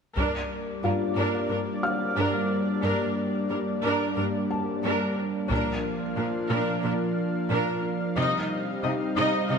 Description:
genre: cinematic, hybrid orchestral and electronic film score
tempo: 90 BPM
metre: 4/4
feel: straight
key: G minor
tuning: A4 = 440 Hz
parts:
  - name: rich symphonic viola section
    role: accompaniment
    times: 0.2-9.6 s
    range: D4 to Eb5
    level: -29 LUFS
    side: equal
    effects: none
  - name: lush unison pad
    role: sustained chords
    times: 0.2-9.6 s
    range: F3 to F5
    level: -28 LUFS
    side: equal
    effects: chorus
  - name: clear symphonic cello section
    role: bass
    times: 0.2-9.6 s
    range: G2 to C3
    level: -32 LUFS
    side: right 2 dB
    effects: none
  - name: solo taiko drums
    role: drums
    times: 0.2-1.5, 5.5-6.8 s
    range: none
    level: -32 LUFS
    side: left 1 dB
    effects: none
  - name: felt-muted upright piano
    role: texture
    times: 0.8-8.2 s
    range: F4 to F6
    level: -34 LUFS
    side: left 4 dB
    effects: ping-pong delay
room: moderate concert hall reverb, RT60 2.4 s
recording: none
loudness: -24 LUFS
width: side -6 dB against mid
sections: 0.2-9.6 A section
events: build-up 0.2-9.6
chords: 0.2 Gm; 5.5 Bb; 8.2 Cm

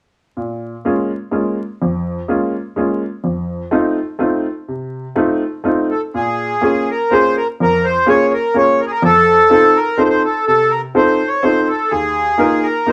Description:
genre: musette waltz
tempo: 125 BPM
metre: 3/4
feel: straight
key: Bb minor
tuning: A4 = 439 Hz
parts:
  - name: clear upright piano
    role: accompaniment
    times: 0.4-12.9 s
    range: Eb2 to Bb4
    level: -19 LUFS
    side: equal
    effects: none
  - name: accordion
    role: melody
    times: 5.9-12.9 s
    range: Ab4 to Db5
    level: -16 LUFS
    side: equal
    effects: none
room: wet studio reverb, RT60 0.5 s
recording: vinyl crackle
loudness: -16 LUFS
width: mono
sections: 0.4-6.1 A section; 6.1-12.9 B section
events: none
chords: 0.4 Bbm7; 3.3 F7; 6.1 Bbm7; 9.0 F7; 11.9 Ebsus2

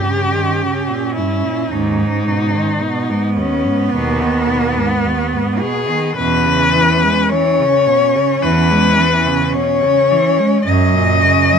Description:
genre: classical, lyrical piece for cello ensemble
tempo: 53 BPM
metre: 4/4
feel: rubato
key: unclear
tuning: A4 = 439 Hz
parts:
  - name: rich cello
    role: melody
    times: 0.0-11.6 s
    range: B3 to D#5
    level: -16 LUFS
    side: left 4 dB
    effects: none
  - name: rich cello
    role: second line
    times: 0.0-11.6 s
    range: B3 to C#4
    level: -20 LUFS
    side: right 10 dB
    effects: none
  - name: rich cello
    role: accompaniment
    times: 0.0-11.6 s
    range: D#2 to G#3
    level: -20 LUFS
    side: equal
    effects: none
  - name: rich cello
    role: bass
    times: 0.0-11.6 s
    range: D#2 to G#2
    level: -19 LUFS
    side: right 2 dB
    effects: none
room: light reverb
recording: minimal, uncompressed stereo recording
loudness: -13 LUFS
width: side -6 dB against mid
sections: 0.0-11.6 A section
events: none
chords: 0.0 D#7/G; 1.7 G#m/D#; 6.2 C#m7/E; 10.7 F#

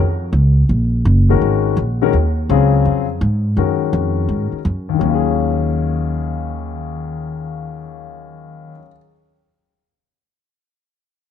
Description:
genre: jazz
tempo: 167 BPM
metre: 4/4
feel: swing 64% on 8ths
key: Eb minor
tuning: A4 = 440 Hz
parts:
  - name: upright bass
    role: bass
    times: 0.0-8.8 s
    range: Gb1 to Ab2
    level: -17 LUFS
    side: right 1 dB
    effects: none
  - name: warm concert grand piano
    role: accompaniment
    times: 1.3-9.0 s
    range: Eb2 to Bb4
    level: -19 LUFS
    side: left 11 dB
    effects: none
room: light reverb, small room ambience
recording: 1960s-style stereo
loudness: -15 LUFS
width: side -9 dB against mid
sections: 0.0-2.1 A section; 2.1-5.0 B section; 5.0-7.9 C section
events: none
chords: 0.0 Ebm11

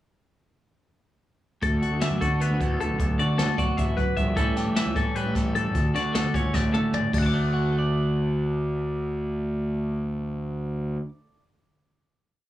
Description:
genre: math rock and midwest emo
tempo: 304 BPM (eighths)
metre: 7/8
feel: straight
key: D major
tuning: A4 = 440 Hz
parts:
  - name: clean electric guitar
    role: accompaniment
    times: 1.6-11.4 s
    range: D2 to D5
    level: -28 LUFS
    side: right 2 dB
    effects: spring reverb
  - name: twelve-string electric guitar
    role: arpeggios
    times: 1.6-11.1 s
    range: A4 to D6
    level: -29 LUFS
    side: left 5 dB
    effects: digital delay, plate reverb
  - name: fuzz picked electric bass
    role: bass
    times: 1.6-11.0 s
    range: G1 to D3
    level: -27 LUFS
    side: equal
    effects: overdrive
  - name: jazz brush drum kit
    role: drums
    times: 1.6-7.2 s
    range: crash cymbal, hi-hat, kick drum, snare drum, toms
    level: -28 LUFS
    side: equal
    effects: none
room: light reverb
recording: small room ambience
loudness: -23 LUFS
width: side -14 dB against mid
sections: 1.6-7.1 A section; 7.1-9.9 final chord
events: drum fill 6.5-7.1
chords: 1.6 D69; 4.4 A9; 5.7 Dmaj7; 7.1 D

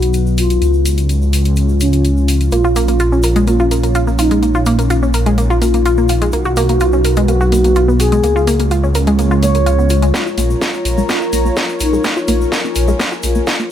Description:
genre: melodic techno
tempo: 126 BPM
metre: 4/4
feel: straight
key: Bb phrygian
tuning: A4 = 440 Hz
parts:
  - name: expressive synth lead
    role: melody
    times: 0.0-13.7 s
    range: Db4 to Db5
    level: -18 LUFS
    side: equal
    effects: wide subtle chorus, sidechain pumping, tape echo
  - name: dark analog pad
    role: sustained chords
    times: 0.0-13.7 s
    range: F#3 to Bb5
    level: -21 LUFS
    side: left 1 dB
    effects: chorus, sidechain pumping
  - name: swelling detuned saw bass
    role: bass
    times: 0.0-13.4 s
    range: Bb1 to Db2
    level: -15 LUFS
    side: equal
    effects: sidechain pumping
  - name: house drum kit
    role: drums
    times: 0.0-13.6 s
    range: hi-hat, snare drum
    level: -22 LUFS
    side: equal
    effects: high-pass filter on hats, high-pass filter on cymbals, high-pass filter on snare
  - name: tube shaker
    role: percussion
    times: 0.0-13.7 s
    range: none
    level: -31 LUFS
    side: left 4 dB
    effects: none
  - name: analog pluck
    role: arpeggios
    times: 2.5-13.7 s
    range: Ab3 to Bb4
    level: -18 LUFS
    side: equal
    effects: chorus, sidechain pumping, tape echo
  - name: electronic kick drum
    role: drums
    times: 10.1-13.6 s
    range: none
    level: -26 LUFS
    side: equal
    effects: high-pass filter on kick
room: light reverb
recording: none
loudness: -12 LUFS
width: side -10 dB against mid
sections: 0.0-10.1 A section; 10.1-13.7 B section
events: filter sweep on analog synth lead 0.0-10.1; filter sweep on analog synth pad 0.0-10.1; build-up 10.1-13.7; drum fill 10.1-13.7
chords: 0.0 B; 0.6 Db; 2.5 Bbm; 6.3 B; 8.2 Db; 10.1 Bbm

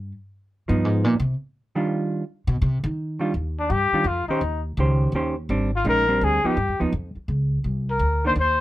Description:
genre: jazz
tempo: 167 BPM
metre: 3/4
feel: swing 63% on 8ths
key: Eb major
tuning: A4 = 440 Hz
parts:
  - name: upright bass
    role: bass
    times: 0.0-8.6 s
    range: Ab1 to Eb3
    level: -23 LUFS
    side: equal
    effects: none
  - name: hollow-body jazz guitar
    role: accompaniment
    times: 0.7-8.4 s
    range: Eb3 to C5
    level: -24 LUFS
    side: right 2 dB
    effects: none
  - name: breathy trumpet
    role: melody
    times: 3.6-8.6 s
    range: D4 to C5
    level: -21 LUFS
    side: left 2 dB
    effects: none
room: little or no reverb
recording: close, detailed microphones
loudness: -21 LUFS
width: side -15 dB against mid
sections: 0.0-3.3 A section; 3.3-8.6 B section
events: upright bass solo 0.0-3.3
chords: 0.1 G7alt; 1.2 Ebmaj9; 3.3 Ebadd9; 4.4 Eb6; 5.5 Abmaj9#11; 6.6 G7(#5, no3); 7.7 Cm9

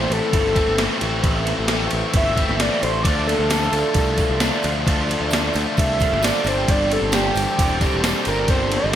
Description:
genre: indie rock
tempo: 132 BPM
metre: 4/4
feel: straight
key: unclear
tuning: A4 = 441 Hz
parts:
  - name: overdriven synth lead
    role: melody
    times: 0.0-9.0 s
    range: G4 to E5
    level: -23 LUFS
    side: right 1 dB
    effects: chorus
  - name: biting overdriven guitar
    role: riff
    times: 0.0-8.9 s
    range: E3 to D4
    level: -24 LUFS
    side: left 6 dB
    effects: none
  - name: raw garage guitar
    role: riff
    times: 0.0-9.0 s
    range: G2 to G4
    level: -26 LUFS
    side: right 7 dB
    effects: overdrive, ensemble chorus, digital delay
  - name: modern bright picked electric bass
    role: bass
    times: 0.0-9.0 s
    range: E1 to D2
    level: -25 LUFS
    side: equal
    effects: none
  - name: gated 80s digital drum machine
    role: drums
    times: 0.1-9.0 s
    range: kick drum, ride cymbal, snare drum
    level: -22 LUFS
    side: equal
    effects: gated reverb, gated reverb snare
  - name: hand-pumped harmonium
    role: sustained chords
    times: 3.0-9.0 s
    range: F4 to C6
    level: -34 LUFS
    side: equal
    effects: none
  - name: tambourine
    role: percussion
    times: 3.0-8.8 s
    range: none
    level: -36 LUFS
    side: right 6 dB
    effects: none
room: moderate plate reverb, RT60 1.7 s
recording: bright 1980s-style digital production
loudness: -17 LUFS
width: side -10 dB against mid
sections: 0.0-9.0 A section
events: analog synth lead solo 0.0-9.0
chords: 0.0 Am; 3.1 Dm7; 6.5 Gsus4

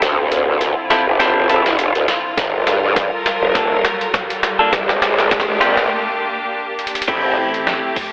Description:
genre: glitch hop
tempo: 102 BPM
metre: 4/4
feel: swing 56% on 16ths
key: A phrygian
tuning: A4 = 440 Hz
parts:
  - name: bright symphonic string section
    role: sustained chords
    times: 0.0-8.1 s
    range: D3 to Bb4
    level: -21 LUFS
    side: equal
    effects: sidechain pumping
  - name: growl bass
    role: bass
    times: 0.0-7.4 s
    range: F1 to G2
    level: -16 LUFS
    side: equal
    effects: chorus, overdrive, high-pass filter
  - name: boom bap sampler-style drum kit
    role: drums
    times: 0.0-8.1 s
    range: crash cymbal, hi-hat, snare drum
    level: -20 LUFS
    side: equal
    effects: high-pass filter on hats, high-pass filter on snare, high-pass filter on cymbals, high-pass filter on room
  - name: riser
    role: sound effects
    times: 0.5-5.9 s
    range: none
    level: -28 LUFS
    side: equal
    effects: none
  - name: clean electric guitar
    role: stabs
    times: 0.9-8.0 s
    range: Bb3 to A4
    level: -19 LUFS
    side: equal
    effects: vintage 12-bit sampler grit, sidechain pumping, low-pass filter, dub echo
  - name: electronic kick drum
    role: drums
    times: 2.4-8.1 s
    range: none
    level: -27 LUFS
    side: equal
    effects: none
  - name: rubbery square bass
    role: bass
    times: 7.4-7.8 s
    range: A1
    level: -31 LUFS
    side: equal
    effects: none
room: moderate plate reverb, RT60 2.5 s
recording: telephone sound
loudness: -14 LUFS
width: side -28 dB against mid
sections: 0.0-7.1 A section; 7.1-8.1 B section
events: build-up 0.0-7.1; drum fill 0.0-5.9, 6.8; riser 0.5-5.9; break 5.9-7.1; drop 7.1-8.1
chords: 0.0 Dm9; 2.4 Gm9; 4.7 Bb6; 7.1 Am7

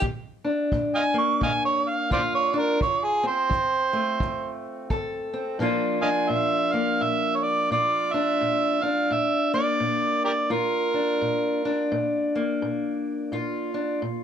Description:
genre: acoustic country blues, solo or duo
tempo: 86 BPM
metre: 4/4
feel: swing 60% on 8ths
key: Bb major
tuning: A4 = 441 Hz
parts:
  - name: fingerpicked steel-string acoustic guitar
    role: accompaniment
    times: 0.0-14.2 s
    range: F2 to A4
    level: -25 LUFS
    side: left 2 dB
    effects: none
  - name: kick drum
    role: drums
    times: 0.0-5.1 s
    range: none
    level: -30 LUFS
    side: equal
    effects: none
  - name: overdriven harmonica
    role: melody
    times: 1.0-11.9 s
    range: G4 to Db6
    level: -23 LUFS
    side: right 3 dB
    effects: none
room: moderate studio reverb, RT60 0.7 s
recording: none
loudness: -22 LUFS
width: side -8 dB against mid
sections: 0.0-5.6 A section; 5.6-14.2 B section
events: harmonica solo 0.0-5.6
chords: 0.0 Bb; 2.8 F; 5.6 Bb

